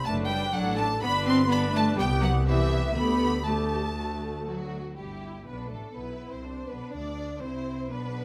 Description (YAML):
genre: quick classical-period movement for string orchestra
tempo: 123 BPM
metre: 4/4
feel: rubato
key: G major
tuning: A4 = 440 Hz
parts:
  - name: warm studio violin section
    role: second line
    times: 0.0-8.2 s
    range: F#4 to C6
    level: -38 LUFS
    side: equal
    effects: none
  - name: rich chamber viola section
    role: accompaniment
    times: 0.0-8.2 s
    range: A3 to B4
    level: -36 LUFS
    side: equal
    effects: none
  - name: clear chamber double bass section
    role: bass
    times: 0.0-8.2 s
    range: F#1 to D2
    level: -33 LUFS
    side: equal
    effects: none
  - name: warm chamber violin section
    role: melody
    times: 0.1-8.2 s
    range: G4 to C6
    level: -35 LUFS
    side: equal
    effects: none
  - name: rich chamber cello section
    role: bass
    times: 0.1-8.2 s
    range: E3 to D4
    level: -33 LUFS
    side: equal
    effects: none
room: light reverb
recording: close, detailed microphones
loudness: -27 LUFS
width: mono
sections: 0.0-5.0 A section; 5.0-8.2 B section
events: none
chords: 0.1 D/F#; 1.0 G; 2.0 Cmaj7; 3.0 Dsus4; 4.0 D; 5.0 G; 6.9 D7(no3)